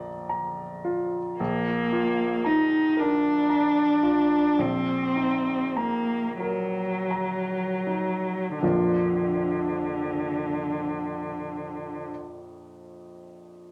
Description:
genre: classical, romantic duo for cello and grand piano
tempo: 25-38 BPM (dotted quarters)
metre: 6/8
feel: rubato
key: Bb major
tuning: A4 = 443 Hz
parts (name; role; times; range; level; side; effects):
- bright baby grand piano; accompaniment; 0.0-13.7 s; Bb1 to Bb5; -32 LUFS; equal; none
- rich cello; melody; 1.4-12.1 s; D3 to Eb4; -27 LUFS; equal; none
room: wet large studio reverb, RT60 0.9 s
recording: none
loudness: -26 LUFS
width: mono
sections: 0.0-1.4 A section; 1.4-8.6 B section; 8.6-12.7 C section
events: slowing down 0.0-8.6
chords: 0.0 Bb; 4.6 Ebm/Bb; 8.6 Bb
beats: | 1.39 2.96 | 4.58 6.40 | 8.61 10.67

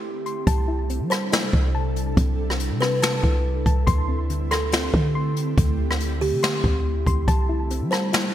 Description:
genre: hip hop, atmospheric cloud-rap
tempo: 141 BPM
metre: 4/4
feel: half-time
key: C major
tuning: A4 = 440 Hz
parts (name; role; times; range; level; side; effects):
- ethereal airy pad; sustained chords; 0.0-8.3 s; C3 to A4; -31 LUFS; right 1 dB; ensemble chorus, built-in reverb, sidechain pumping
- soft round pluck; arpeggios; 0.0-8.3 s; D3 to C6; -31 LUFS; left 3 dB; chorus, digital delay
- jazz brush drum kit; drums; 0.3-8.2 s; hi-hat, kick drum, rim click, snare drum; -23 LUFS; equal; gated reverb
- clean 808-style bass; bass; 0.5-8.3 s; C2 to G3; -24 LUFS; equal; none
- kalimba; melody; 1.1-8.3 s; G4 to C5; -29 LUFS; right 1 dB; digital delay
room: light reverb, small room ambience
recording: bright 1980s-style digital production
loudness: -20 LUFS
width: side -12 dB against mid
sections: 0.5-8.3 A section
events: break 0.0-0.5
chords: 0.5 C6; 3.9 D7sus4; 7.3 C6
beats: 0.04 | 0.47 0.90 1.32 1.75 | 2.17 2.60 3.02 3.45 | 3.87 4.30 4.72 5.15 | 5.58 6.00 6.43 6.85 | 7.28 7.70 8.13

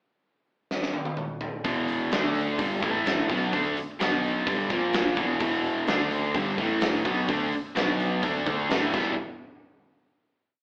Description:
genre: classic rock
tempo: 127 BPM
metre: 4/4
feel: straight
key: E minor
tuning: A4 = 442 Hz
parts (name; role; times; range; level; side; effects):
- huge arena drum kit; drums; 0.7-9.0 s; crash cymbal, hi-hat, kick drum, snare drum, toms; -32 LUFS; equal; none
- cranked stack guitar; riff; 1.6-9.1 s; E2 to E4; -30 LUFS; equal; overdrive
- overdriven semi-hollow guitar; riff; 1.6-9.1 s; E2 to E4; -32 LUFS; equal; none
- growling picked electric bass; bass; 1.6-9.2 s; E1 to D2; -41 LUFS; equal; overdrive
room: moderate large studio reverb, RT60 0.9 s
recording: band playing live in one room, AM radio sound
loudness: -27 LUFS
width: mono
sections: 0.0-1.6 pickup bar; 1.6-9.2 riff; 9.2-10.6 final hit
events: drum fill 0.7-1.6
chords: 0.0 N.C.; 1.6 E5; 2.1 D5; 2.6 G5; 2.8 A5; 3.3 E5; 4.0 B5; 4.5 G5; 4.7 A#5; 5.2 E5; 5.9 D5; 6.4 G5; 6.6 A5; 7.1 E5; 7.8 B5; 8.2 D5; 8.7 A5; 8.9 Em; 9.2 N.C.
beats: 0.22 0.70 1.17 | 1.64 2.12 2.59 3.06 | 3.53 4.00 4.47 4.94 | 5.41 5.88 6.35 6.82 | 7.29 7.76 8.23 8.70

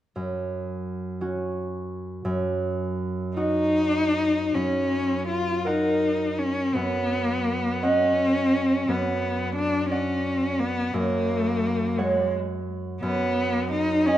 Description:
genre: classical, romantic duo for cello and harp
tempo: 49-59 BPM (dotted quarters)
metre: 6/8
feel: rubato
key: F# major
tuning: A4 = 438 Hz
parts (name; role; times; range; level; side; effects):
- concert harp; accompaniment; 0.2-14.2 s; F#2 to G#5; -26 LUFS; right 2 dB; none
- rich cello; melody; 3.4-14.2 s; G#3 to E#4; -24 LUFS; left 2 dB; none
room: moderate recital hall reverb, RT60 1.6 s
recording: none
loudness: -23 LUFS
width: side -12 dB against mid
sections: 0.2-4.5 A section; 4.5-14.2 B section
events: none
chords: 0.2 F#5; 2.2 D#m/F#; 4.5 F#; 6.7 B/F#; 8.9 Bm/F#; 10.9 F#; 13.0 G#m7/F# (rootless)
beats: | 0.16 1.21 | 2.25 3.36 | 4.55 5.66 | 6.75 7.83 | 8.89 9.91 | 10.93 11.98 | 13.03 14.08

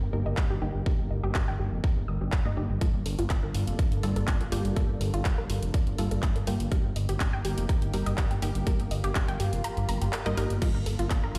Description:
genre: progressive house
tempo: 123 BPM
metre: 4/4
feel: straight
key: unclear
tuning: A4 = 439 Hz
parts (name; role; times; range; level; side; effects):
- lush unison pad; sustained chords; 0.0-11.4 s; G3 to A4; -41 LUFS; equal; chorus, phaser, sidechain pumping
- unison pluck; stabs; 0.0-11.4 s; G3 to Eb5; -38 LUFS; equal; sidechain pumping, delay
- fat analog bass; bass; 0.0-11.4 s; F1 to G1; -32 LUFS; equal; sidechain pumping
- analog pluck; arpeggios; 0.1-11.4 s; F4 to Eb6; -40 LUFS; equal; chorus, sidechain pumping, delay
- big-room dance drum kit; drums; 0.4-11.4 s; crash cymbal, handclaps, hi-hat; -39 LUFS; equal; studio reverb
- electronic kick drum; drums; 0.4-11.2 s; none; -31 LUFS; equal; studio reverb
room: light reverb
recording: played on a big sound system in a bare room, large studio reverb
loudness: -28 LUFS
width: mono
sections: 0.0-11.4 A section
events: filter sweep on synth arpeggio sound 0.0-11.4; filter sweep on synth pluck 0.0-11.4; filter sweep on analog synth pad 0.0-11.4; kick drops out 9.6-10.6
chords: 0.0 Eb; 2.8 Gm9; 6.7 Eb; 10.6 Gm9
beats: 0.38 | 0.86 1.35 1.84 2.33 | 2.81 3.30 3.79 4.28 | 4.76 5.25 5.74 6.23 | 6.72 7.20 7.69 8.18 | 8.67 9.15 9.64 10.13 | 10.62 11.11

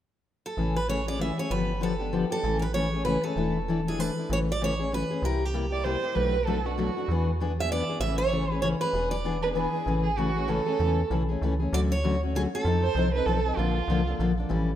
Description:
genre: acoustic string swing (jazz manouche)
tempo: 194 BPM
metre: 3/4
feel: swing 60% on 8ths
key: A major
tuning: A4 = 440 Hz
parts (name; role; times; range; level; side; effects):
- picked steel-string acoustic guitar; melody; 0.5-9.4, 11.7-12.9 s; G4 to E5; -30 LUFS; right 2 dB; none
- picked steel-string acoustic guitar; accompaniment; 0.6-14.7 s; B2 to A4; -28 LUFS; left 4 dB; none
- metallic FM bass; bass; 0.6-14.8 s; E1 to F2; -30 LUFS; right 1 dB; none
- warm violin; second line; 5.7-7.3, 9.4-14.2 s; F4 to D5; -30 LUFS; right 5 dB; none
room: wet plate reverb, RT60 2.5 s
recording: rough home demo mix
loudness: -24 LUFS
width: side -11 dB against mid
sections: 0.6-4.3 A section; 4.3-11.7 B section; 11.7-14.8 C section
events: none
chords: 0.0 N.C.; 0.6 Amaj7; 1.5 G9; 2.4 Amaj7; 3.4 E7sus4; 4.3 Amaj7; 5.2 C7; 6.2 Bm7; 7.1 E7; 8.0 Amaj7; 8.9 E7; 9.9 Amaj7; 11.7 Dmaj7; 12.7 F7; 13.6 Bbmaj7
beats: 0.27 | 0.58 0.89 1.20 | 1.51 1.82 2.13 | 2.44 2.75 3.06 | 3.37 3.68 3.99 | 4.30 4.61 4.92 | 5.22 5.54 5.84 | 6.15 6.46 6.77 | 7.08 7.39 7.70 | 8.01 8.32 8.63 | 8.94 9.25 9.56 | 9.87 10.18 10.49 | 10.80 11.11 11.42 | 11.73 12.04 12.34 | 12.65 12.96 13.27 | 13.58 13.89 14.20 | 14.51

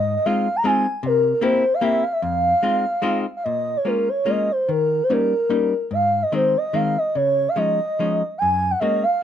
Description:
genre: musette waltz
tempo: 146 BPM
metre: 3/4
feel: swing 54% on 8ths, rubato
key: F minor, Bb minor from 3.4 s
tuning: A4 = 440 Hz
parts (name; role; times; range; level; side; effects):
- pure breathy sine lead; melody; 0.0-9.2 s; Bb4 to Bb5; -19 LUFS; right 1 dB; chorus
- hollow-body jazz guitar; accompaniment; 0.0-9.0 s; F2 to G4; -24 LUFS; left 3 dB; none
room: light reverb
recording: dark, warm production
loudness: -18 LUFS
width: side -9 dB against mid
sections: 0.0-3.4 A section; 3.4-9.2 B section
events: none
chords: 0.0 Fm7/Ab; 1.0 C7; 2.2 Fm7; 3.4 Bbm7; 4.7 Eb7; 5.9 Ab; 7.2 Dbadd9; 8.4 Gbadd9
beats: 0.26 0.65 | 1.04 1.43 1.82 | 2.22 2.62 3.03 | 3.45 3.86 4.28 | 4.70 5.11 5.52 | 5.93 6.34 6.75 | 7.15 7.57 7.99 | 8.40 8.82

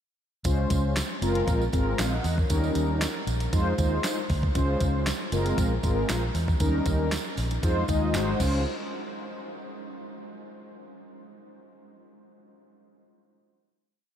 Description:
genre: early-eighties boogie funk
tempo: 117 BPM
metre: 4/4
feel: straight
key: Db major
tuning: A4 = 439 Hz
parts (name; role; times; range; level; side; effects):
- mellow synth brass; accompaniment; 0.4-8.6 s; Gb3 to Gb5; -28 LUFS; left 1 dB; chorus
- crisp 8-bit digital drum machine; drums; 0.4-8.5 s; crash cymbal, handclaps, hi-hat, kick drum, snare drum; -29 LUFS; equal; none
- tambourine; percussion; 0.4-8.6 s; none; -41 LUFS; right 7 dB; none
- vintage muted fingered electric bass; bass; 0.5-8.6 s; Gb1 to F2; -28 LUFS; equal; none
room: moderate huge ambient reverb, RT60 8.3 s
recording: dreamy mix soaked in reverb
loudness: -24 LUFS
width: side -9 dB against mid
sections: 0.5-8.7 verse; 8.7-10.7 final hit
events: none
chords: 0.5 Dbmaj7; 1.2 Gbmaj9#11; 2.5 Eb7; 3.5 Fm7; 4.6 Dbmaj7; 5.3 Gbmaj9#11; 6.6 Eb7; 7.6 Fm7; 8.1 Ab7; 8.4 Dbmaj7; 8.7 N.C.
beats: | 0.45 0.96 1.48 1.99 | 2.50 3.02 3.53 4.04 | 4.55 5.07 5.58 6.09 | 6.61 7.12 7.63 8.14

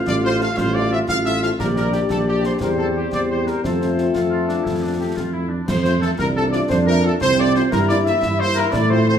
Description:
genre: military-style march for wind band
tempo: 118 BPM (dotted quarters)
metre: 6/8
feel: straight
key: F major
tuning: A4 = 441 Hz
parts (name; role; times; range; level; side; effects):
- warm woodwind section; second line; 0.0-9.2 s; D4 to F5; -24 LUFS; equal; none
- clear trumpet section; melody; 0.1-9.2 s; G4 to F5; -24 LUFS; equal; none
- mellow tuba; bass; 0.1-9.2 s; A1 to A2; -21 LUFS; right 2 dB; none
- concert snare drum, concert bass drum and clash cymbals; drums; 0.1-8.9 s; none; -29 LUFS; equal; none
- mellow French horn section; accompaniment; 0.2-9.1 s; G3 to G4; -25 LUFS; left 6 dB; none
- dark trombone section; sustained chords; 6.2-9.2 s; C4 to E4; -23 LUFS; right 1 dB; none
room: wet large studio reverb, RT60 1.2 s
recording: heard from further back in the room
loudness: -17 LUFS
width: side -8 dB against mid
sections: 0.0-5.7 A section; 5.7-9.2 A section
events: none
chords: 0.0 F/A; 1.6 Gm/Bb; 2.6 C/E; 3.6 F; 7.7 Edim/G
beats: 0.06 | 0.57 1.08 | 1.59 2.10 | 2.61 3.12 | 3.63 4.14 | 4.65 5.17 | 5.68 6.19 | 6.70 7.21 | 7.72 8.23 | 8.74

